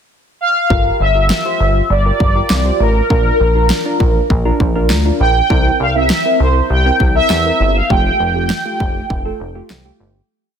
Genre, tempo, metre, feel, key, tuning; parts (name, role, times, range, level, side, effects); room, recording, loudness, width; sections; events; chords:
synth-pop; 100 BPM; 4/4; straight; G dorian; A4 = 436 Hz
mellow synth brass; melody; 0.4-9.7 s; Bb4 to G5; -16 LUFS; equal; chorus, phaser
soft electric-piano-like synth keys; accompaniment; 0.7-10.1 s; A3 to C5; -21 LUFS; right 2 dB; chorus, phaser
chorused synth bass; bass; 0.7-10.2 s; F1 to E2; -16 LUFS; equal
pop drum kit; drums; 0.7-9.8 s; kick drum, snare drum; -17 LUFS; equal
light reverb, digital ambience; dense, heavily limited modern master; -12 LUFS; side -8 dB against mid
0.0-0.7 pickup bar; 0.7-10.3 verse
fade-out 7.9-10.3
0.0 N.C.; 0.7 Gm7; 3.1 Bb; 5.5 C7; 7.9 Fadd9